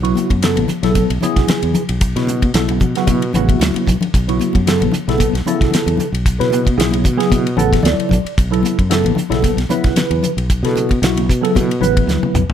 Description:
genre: electric jazz fusion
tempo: 113 BPM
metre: 4/4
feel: swing 54% on 16ths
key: unclear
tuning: A4 = 440 Hz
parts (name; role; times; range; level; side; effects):
- tine electric piano; accompaniment; 0.0-12.4 s; C#3 to F#5; -18 LUFS; equal; medium stereo tremolo, phaser
- fretless electric bass; bass; 0.0-12.5 s; A1 to B2; -18 LUFS; equal; none
- damped 70s drum kit; drums; 0.0-12.5 s; hi-hat, kick drum, ride cymbal, snare drum, toms; -18 LUFS; equal; none
- congas; percussion; 0.2-12.5 s; none; -23 LUFS; left 4 dB; none
room: little or no reverb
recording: none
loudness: -13 LUFS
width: side -9 dB against mid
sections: 0.0-12.5 A section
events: drum fill 3.5-4.1, 12.1-12.5; tine electric piano fill 7.3-8.4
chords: 0.0 B7sus2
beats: 0.42 0.95 1.48 | 2.01 2.54 3.07 3.60 | 4.13 4.66 5.20 5.72 | 6.25 6.79 7.32 7.85 | 8.38 8.91 9.44 9.97 | 10.50 11.03 11.56 12.09

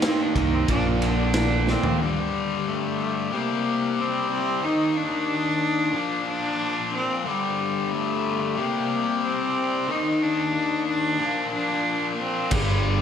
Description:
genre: quiet-loud alternative rock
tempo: 91 BPM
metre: 4/4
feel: straight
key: unclear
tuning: A4 = 440 Hz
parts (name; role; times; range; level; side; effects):
- rich cello; melody; 0.0-13.0 s; G3 to Eb4; -26 LUFS; right 1 dB; none
- twangy electric guitar; arpeggios; 0.0-2.0 s; Bb2 to Eb4; -32 LUFS; left 4 dB; wide subtle chorus, slapback echo, tape echo
- distorted electric guitar; riff; 0.0-2.0, 12.5-13.0 s; G2 to Eb4; -27 LUFS; right 8 dB; distortion, slapback echo
- tight distorted guitar; riff; 0.0-13.0 s; G2 to Eb4; -26 LUFS; left 6 dB; distortion
- raw garage drum kit; drums; 0.0-2.0, 12.5-12.7 s; crash cymbal, kick drum, ride cymbal, snare drum, toms; -26 LUFS; equal; none
- overdriven picked electric bass; bass; 0.4-1.7, 12.5-13.0 s; G1 to C2; -24 LUFS; equal; none
room: wet lush hall reverb, RT60 1.8 s, studio reverb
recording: big arena sound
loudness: -22 LUFS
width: side -8 dB against mid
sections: 0.0-2.0 A section; 2.0-13.0 B section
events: cello solo 0.0-2.0; drum fill 1.7-2.0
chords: 0.0 Eb5; 0.7 Bbadd9; 2.0 Gsus2; 3.3 C5; 4.6 Eb5; 6.0 Bb; 7.3 Gsus2; 8.6 C5; 9.9 Eb5; 11.2 Bb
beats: 0.04 0.69 1.35 | 2.01 2.67 3.32 3.98 | 4.64 5.29 5.95 6.61 | 7.26 7.92 8.58 9.24 | 9.89 10.55 11.21 11.87 | 12.52

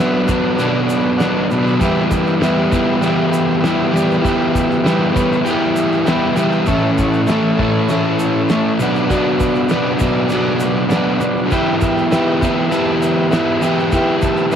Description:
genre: garage rock duo or trio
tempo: 99 BPM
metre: 4/4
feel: straight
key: E dorian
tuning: A4 = 440 Hz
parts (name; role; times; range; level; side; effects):
- overdriven combo organ; sustained chords; 0.0-14.6 s; F#4 to B5; -22 LUFS; right 1 dB; cassette tape
- crunchy overdriven guitar; riff; 0.0-14.6 s; A2 to G4; -14 LUFS; equal; cassette tape
- cloth-damped thuddy drum kit; drums; 0.3-14.6 s; crash cymbal, kick drum, snare drum; -23 LUFS; equal; none
- egg shaker; percussion; 0.3-14.6 s; none; -40 LUFS; right 4 dB; none
room: light reverb, studio reverb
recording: home recording on cassette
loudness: -13 LUFS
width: side -8 dB against mid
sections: 0.0-14.6 A section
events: transistor combo organ fill 0.6-1.8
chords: 0.0 Bm; 1.8 Em; 6.7 A; 8.8 Bm; 11.5 Em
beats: 0.59 1.20 | 1.81 2.42 3.03 3.64 | 4.25 4.86 5.46 6.07 | 6.68 7.28 7.89 8.49 | 9.10 9.70 10.31 10.91 | 11.51 12.12 12.72 13.32 | 13.92 14.52

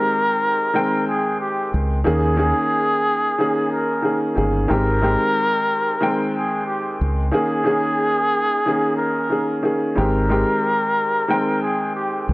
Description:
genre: hip hop, boom-bap hip-hop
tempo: 91 BPM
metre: 4/4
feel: swing 55% on 16ths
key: Ab major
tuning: A4 = 441 Hz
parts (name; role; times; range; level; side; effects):
- trumpet with cup mute; melody; 0.0-12.2 s; G4 to Bb4; -21 LUFS; equal; high-pass filter, low-pass filter, analog delay
- warm upright piano; accompaniment; 0.0-12.3 s; Eb3 to G5; -21 LUFS; equal; high-pass filter, low-pass filter
- deep dub fingered electric bass; bass; 1.7-12.3 s; G1 to Eb2; -20 LUFS; equal; none
room: little or no reverb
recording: dry, gritty hardware recording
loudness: -17 LUFS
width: side -20 dB against mid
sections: 0.0-12.3 A section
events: none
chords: 0.0 Abmaj7; 2.1 Eb7sus4; 4.7 Abmaj7; 7.3 Eb7sus4; 10.0 Abmaj7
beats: 0.08 0.74 1.40 | 2.06 2.72 3.38 4.04 | 4.70 5.36 6.02 6.68 | 7.34 8.00 8.65 9.31 | 9.97 10.63 11.29 11.95

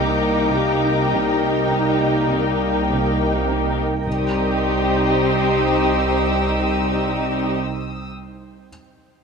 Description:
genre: cinematic, suspense film score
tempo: 52 BPM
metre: 4/4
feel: straight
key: C minor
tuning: A4 = 440 Hz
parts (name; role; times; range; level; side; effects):
- muted studio violin section; melody; 0.0-7.6 s; G4; -24 LUFS; left 3 dB; none
- muted studio violin section; second line; 0.0-7.5 s; Eb4; -25 LUFS; equal; none
- muted studio viola section; accompaniment; 0.0-7.6 s; Bb3 to C4; -28 LUFS; equal; none
- glassy FM pad; sustained chords; 0.0-7.6 s; Eb4 to G5; -26 LUFS; right 1 dB; ensemble chorus, built-in reverb
- mellow French horn section; sustained chords; 0.0-7.6 s; G3 to Eb4; -26 LUFS; left 6 dB; none
- muted studio cello section; riff; 0.0-3.8 s; C3 to C4; -30 LUFS; right 3 dB; none
- muted studio cello section; bass; 0.0-7.6 s; C2; -28 LUFS; right 2 dB; none
- muted studio double bass section; bass; 0.0-7.5 s; C2; -26 LUFS; right 3 dB; none
- muted studio violin section; texture; 0.0-8.1 s; G5 to E6; -30 LUFS; left 1 dB; none
- timpani; percussion; 4.1-7.6 s; C3; -34 LUFS; left 1 dB; none
room: moderate concert hall reverb, RT60 2.3 s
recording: close, detailed microphones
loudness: -17 LUFS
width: side -5 dB against mid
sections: 0.0-4.1 A section; 4.1-8.7 B section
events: none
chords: 0.0 Eb/C; 4.1 Cm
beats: 0.51 1.70 2.88 | 4.06 5.22 6.37 7.52

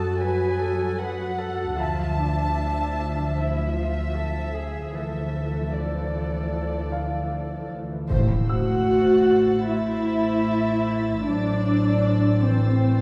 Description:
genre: cinematic, suspense film score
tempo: 76 BPM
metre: 4/4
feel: straight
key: unclear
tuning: A4 = 440 Hz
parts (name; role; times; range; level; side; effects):
- warm chamber violin section; melody; 0.0-13.0 s; C5 to A5; -36 LUFS; equal; none
- warm chamber viola section; accompaniment; 0.0-13.0 s; E3 to E5; -29 LUFS; equal; none
- dark studio double bass section; bass; 0.0-13.0 s; A1 to F#2; -29 LUFS; equal; none
- warm chamber cello section; bass; 0.0-13.0 s; A2 to B4; -34 LUFS; equal; none
- bright grand piano; texture; 0.0-13.0 s; F5 to E6; -40 LUFS; equal; none
- warm chamber violin section; texture; 0.0-1.4, 8.1-13.0 s; F#5 to A6; -44 LUFS; equal; none
- impact; sound effects; 8.1-11.3 s; none; -31 LUFS; equal; none
- warm chamber violin section; second line; 8.5-13.0 s; C5 to F#5; -35 LUFS; equal; none
- warm clarinet; second line; 8.5-13.0 s; E3 to A3; -28 LUFS; equal; none
- clear French horn section; sustained chords; 8.5-13.0 s; C4 to F#4; -30 LUFS; equal; none
room: wet scoring stage reverb, RT60 1.8 s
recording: heard from further back in the room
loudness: -24 LUFS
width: mono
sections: 0.0-8.1 A section; 8.1-13.0 B section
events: band accent 8.1-8.9; impact 8.1-11.3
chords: 0.0 F#m; 1.8 Dmadd9; 8.1 Am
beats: 0.21 1.00 | 1.79 2.58 3.37 4.16 | 4.95 5.74 6.53 7.32 | 8.11 8.90 9.69 10.47 | 11.26 12.05 12.84

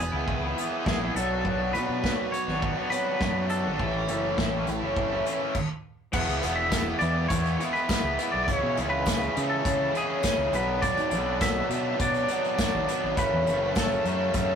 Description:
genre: indie rock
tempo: 102 BPM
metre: 4/4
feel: straight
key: E mixolydian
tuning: A4 = 441 Hz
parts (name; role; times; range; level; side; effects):
- twangy electric guitar; melody; 0.0-14.6 s; G#4 to F#5; -31 LUFS; equal; tremolo
- raw garage guitar; riff; 0.0-14.6 s; F#2 to F#4; -28 LUFS; left 1 dB; overdrive
- thick fuzz guitar; riff; 0.0-14.6 s; E3 to A4; -34 LUFS; right 4 dB; distortion
- growling fingered electric bass; bass; 0.0-14.6 s; E1 to C#3; -31 LUFS; equal; overdrive
- unplugged drum kit; drums; 0.3-14.5 s; crash cymbal, hi-hat, kick drum, snare drum; -30 LUFS; equal; none
- tambourine; percussion; 6.7-13.9 s; none; -45 LUFS; right 4 dB; none
room: moderate studio reverb, RT60 0.5 s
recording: rough rehearsal-room recording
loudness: -24 LUFS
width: side -7 dB against mid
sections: 0.0-6.1 A section; 6.1-14.6 B section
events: stop 5.5-6.1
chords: 0.0 E; 1.2 Bm; 3.8 A; 6.1 E; 8.5 C#m; 10.5 Bm; 13.2 F#m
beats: 0.28 0.86 | 1.45 2.03 2.62 3.20 | 3.79 4.37 4.96 5.54 | 6.13 6.72 7.30 7.89 | 8.47 9.06 9.65 10.23 | 10.82 11.41 11.99 12.58 | 13.17 13.75 14.34

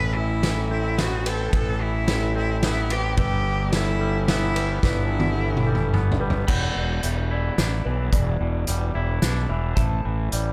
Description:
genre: post-rock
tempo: 109 BPM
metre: 3/4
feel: straight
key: E minor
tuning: A4 = 441 Hz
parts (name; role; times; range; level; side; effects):
- clear cello; melody; 0.0-5.9 s; E4 to B4; -30 LUFS; equal; slapback echo
- pedal steel guitar; sustained chords; 0.0-10.5 s; G4 to B5; -42 LUFS; equal; none
- felt-muted upright piano; arpeggios; 0.0-10.5 s; A4 to F#5; -37 LUFS; equal; slapback echo
- twangy electric guitar; arpeggios; 0.0-10.5 s; E2 to E4; -34 LUFS; equal; slapback echo
- fuzz fingered electric bass; bass; 0.0-10.5 s; E1 to B1; -27 LUFS; equal; overdrive
- loose indie drum kit; drums; 0.4-10.5 s; crash cymbal, hi-hat, kick drum, ride cymbal, snare drum, toms; -28 LUFS; equal; none
room: small room ambience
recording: none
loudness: -23 LUFS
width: mono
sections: 0.0-6.5 A section; 6.5-10.5 B section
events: drum fill 4.8-6.5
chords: 0.0 Amadd9; 3.2 Em7/G; 6.5 Em7; 9.8 Am7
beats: 0.43 0.98 | 1.54 2.09 2.64 | 3.19 3.74 4.29 | 4.84 5.39 5.93 | 6.48 7.03 7.58 | 8.13 8.68 9.23 | 9.78 10.33

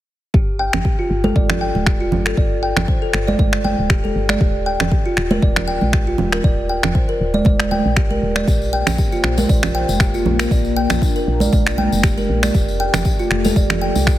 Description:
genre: afro house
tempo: 118 BPM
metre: 4/4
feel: swing 55% on 16ths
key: G minor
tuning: A4 = 441 Hz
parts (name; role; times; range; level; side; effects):
- kalimba; arpeggios; 0.3-14.2 s; D4 to G5; -22 LUFS; equal; sidechain pumping, low-pass filter, dub echo
- woody FM bass; bass; 0.3-14.2 s; D1 to C2; -22 LUFS; equal; sidechain pumping
- electronic kick drum; drums; 0.3-14.2 s; none; -17 LUFS; equal; none
- electronic finger snaps; drums; 0.7-14.2 s; none; -23 LUFS; equal; none
- congas; percussion; 0.7-14.0 s; none; -22 LUFS; right 3 dB; none
- warm analog pad; sustained chords; 8.5-14.2 s; A3 to C5; -25 LUFS; left 4 dB; chorus, sidechain pumping
- tambourine; percussion; 8.5-14.2 s; none; -32 LUFS; left 5 dB; none
room: light reverb, small room ambience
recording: heavily compressed radio sound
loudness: -15 LUFS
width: side -14 dB against mid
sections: 0.3-14.2 A section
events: none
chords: 0.3 G5; 4.4 Ebmaj7; 8.5 Bb; 12.5 Fadd9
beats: | 0.34 0.85 1.36 1.87 | 2.37 2.88 3.39 3.90 | 4.41 4.92 5.42 5.93 | 6.44 6.95 7.46 7.97 | 8.48 8.98 9.49 10.00 | 10.51 11.02 11.53 12.04 | 12.54 13.05 13.56 14.07

